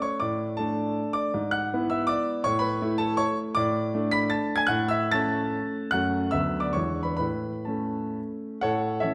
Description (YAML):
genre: classical, romantic triple-time dance for piano with dotted rhythms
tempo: 119-179 BPM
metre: 3/4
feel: rubato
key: A major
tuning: A4 = 440 Hz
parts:
  - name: warm concert grand piano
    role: solo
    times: 0.0-9.1 s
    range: D2 to B6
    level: -27 LUFS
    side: equal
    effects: none
room: moderate recital hall reverb, RT60 1.3 s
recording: none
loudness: -27 LUFS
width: mono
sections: 0.0-8.6 A section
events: none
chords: 0.2 D5/A; 1.3 E7/G#; 2.4 A; 3.6 D5/A; 4.7 A; 5.9 F#m; 6.3 Bm7/D; 6.8 E7; 7.2 A